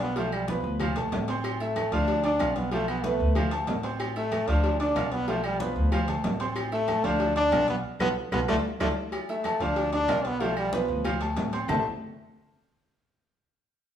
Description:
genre	latin, salsa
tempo	187 BPM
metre	4/4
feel	straight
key	A minor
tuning	A4 = 441 Hz
part	bright trombone	melody	0.0-11.8 s	F3 to D4	-28 LUFS	left 1 dB	none
part	bright concert grand piano	accompaniment	0.0-11.8 s	F3 to F6	-30 LUFS	right 2 dB	none
part	upright bass	bass	0.0-11.8 s	A1 to D2	-31 LUFS	equal	none
part	cowbell and bongos	percussion	0.0-11.8 s	none	-36 LUFS	left 4 dB	none
part	agogo bells and timbales	percussion	0.2-11.8 s	none	-36 LUFS	right 2 dB	none
part	congas	percussion	0.2-11.8 s	none	-36 LUFS	equal	none
part	claves	percussion	0.3-11.8 s	none	-42 LUFS	left 3 dB	none
room	moderate large studio reverb, RT60 1.1 s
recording	band playing live in one room, small room ambience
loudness	-24 LUFS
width	side -9 dB against mid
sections	0.0-9.1 A section; 9.1-11.7 B section; 11.7-13.0 C section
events	drum fill 7.8-9.1; band accent 7.8-9.1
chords	0.0 Bdim; 0.8 Dm; 1.4 Am; 2.1 Bm7b5; 3.4 Dm; 4.0 Am; 4.6 Bdim; 5.9 Dm; 6.6 Am; 7.2 Dm; 7.8 Asus2/B; 8.5 Dm; 9.1 A5; 9.8 Bdim; 11.0 Dm; 11.7 A5

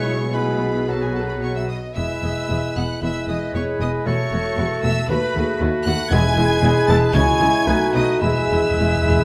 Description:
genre	quick classical-period movement for symphony orchestra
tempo	115 BPM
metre	4/4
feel	uneven beats, rubato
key	E major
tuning	A4 = 441 Hz
part	clear chamber violin section	melody	0.0-9.2 s	G#5 to A6	-31 LUFS	equal	none
part	clear clarinet	second line	0.0-9.2 s	D#4 to F#4	-31 LUFS	equal	none
part	rich chamber violin section	second line	0.0-9.2 s	G#4 to A5	-33 LUFS	equal	none
part	small flute group	second line	0.0-9.2 s	G#4 to A5	-31 LUFS	equal	none
part	warm oboe	second line	0.0-9.2 s	A4 to C#5	-33 LUFS	equal	none
part	mellow bassoon	accompaniment	0.0-9.2 s	F#3 to A3	-29 LUFS	equal	none
part	rich studio viola section	accompaniment	0.0-9.2 s	G#3 to G#4	-32 LUFS	equal	none
part	warm French horn section	sustained chords	0.0-9.2 s	E4 to B4	-27 LUFS	equal	none
part	rich chamber cello section	bass	0.0-9.2 s	D#2 to C#3	-28 LUFS	equal	none
part	rich studio double bass section	bass	0.0-9.2 s	E1 to D#2	-26 LUFS	equal	none
part	timpani	percussion	0.0-0.6, 6.1-9.2 s	E2 to B2	-29 LUFS	equal	none
room	moderate recital hall reverb, RT60 1.5 s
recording	none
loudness	-20 LUFS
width	mono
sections	0.0-9.2 A section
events	timpani fill 8.2-9.2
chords	0.0 E/B; 0.9 B5; 2.0 E; 4.1 F#m7/E; 5.1 B7/D#; 6.1 E; 7.1 C#m; 7.7 B7; 8.2 E

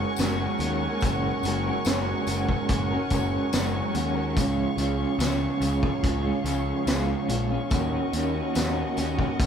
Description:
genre	psychedelic rock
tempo	72 BPM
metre	4/4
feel	straight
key	Gb major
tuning	A4 = 440 Hz
part	warm studio string section	sustained chords	0.0-9.5 s	Ab4 to Db6	-33 LUFS	right 1 dB	none
part	electric guitar through a small old amp	riff	0.0-9.5 s	Db3 to Bb4	-27 LUFS	right 1 dB	tremolo
part	fuzz picked electric bass	bass	0.0-9.5 s	Gb1 to Eb2	-29 LUFS	equal	overdrive
part	vintage drum kit	drums	0.2-9.5 s	hi-hat, kick drum, snare drum	-28 LUFS	equal	none
part	tambourine	percussion	0.2-9.2 s	none	-43 LUFS	left 8 dB	none
room	light reverb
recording	band playing live in one room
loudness	-23 LUFS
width	side -8 dB against mid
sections	0.0-9.5 A section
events	none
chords	0.0 Gbadd9; 4.4 Db; 7.7 Ebm7

